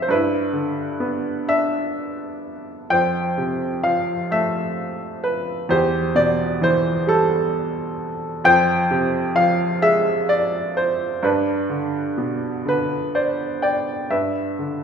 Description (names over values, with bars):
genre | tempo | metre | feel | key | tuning
classical, lyrical solo piano | 43 BPM (dotted quarters) | 6/8 | rubato | unclear | A4 = 439 Hz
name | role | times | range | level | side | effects
bright baby grand piano | solo | 0.0-14.8 s | E2 to G5 | -19 LUFS | equal | none
room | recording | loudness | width
wet recital hall reverb, RT60 1.5 s | recorded in a church or concert hall | -18 LUFS | side -7 dB against mid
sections
0.0-14.1 A section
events
grand piano fill 12.7-14.1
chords
0.1 G6; 2.9 F; 5.7 Emadd11; 8.4 Fm; 11.2 G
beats
| 0.09 1.48 | 2.91 4.32 | 5.71 7.08 | 8.45 9.83 | 11.24 12.67 | 14.11